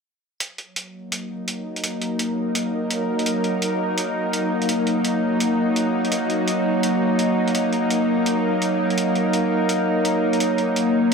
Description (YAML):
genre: half-time drum and bass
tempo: 168 BPM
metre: 4/4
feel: swing 60% on 16ths, half-time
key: Eb minor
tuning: A4 = 440 Hz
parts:
  - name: bowed-like drone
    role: sustained chords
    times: 1.0-11.1 s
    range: Gb3 to Db5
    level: -20 LUFS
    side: equal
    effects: built-in reverb
  - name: electronic hi-hat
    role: drums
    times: 0.4-11.1 s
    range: none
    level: -27 LUFS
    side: right 1 dB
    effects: studio reverb
room: wet digital room reverb, RT60 0.8 s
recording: none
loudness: -19 LUFS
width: side -5 dB against mid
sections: 0.4-11.1 A section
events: none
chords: 0.4 Ebm